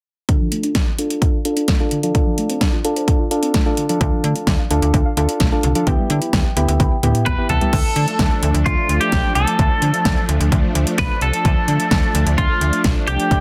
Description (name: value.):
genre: synth-pop.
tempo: 129 BPM.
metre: 4/4.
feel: straight.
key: unclear.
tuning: A4 = 441 Hz.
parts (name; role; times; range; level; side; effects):
soft electric-piano-like synth keys; accompaniment; 0.3-7.7 s; B3 to A4; -24 LUFS; equal; chorus, low-pass filter.
soft round pluck; arpeggios; 0.3-7.7 s; D3 to E6; -29 LUFS; equal; chorus, low-pass filter, tape echo.
pop drum kit; drums; 0.3-13.4 s; crash cymbal, hi-hat, kick drum, snare drum, toms; -21 LUFS; equal; overdrive.
slap-like FM bass; bass; 4.0-13.4 s; B1 to D3; -21 LUFS; equal; none.
twelve-string electric guitar; melody; 7.3-13.4 s; F4 to B4; -23 LUFS; equal; tape echo.
string machine, violas; sustained chords; 7.7-13.4 s; D3 to B4; -26 LUFS; equal; ensemble chorus.
room: moderate plate reverb, RT60 1.0 s, digital ambience.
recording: dense, heavily limited modern master.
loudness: -18 LUFS.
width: mono.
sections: 0.3-7.7 A section; 7.7-13.4 B section.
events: filter sweep 0.3-7.7; drum fill 6.8-7.7.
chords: 0.3 Dm; 2.1 F6; 4.0 Dm; 5.9 Em/D; 7.7 F6.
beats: | 0.29 0.75 1.22 1.68 | 2.15 2.61 3.08 3.54 | 4.01 4.47 4.94 5.40 | 5.87 6.33 6.80 7.26 | 7.73 8.19 8.66 9.12 | 9.59 10.05 10.52 10.98 | 11.45 11.91 12.38 12.85 | 13.31.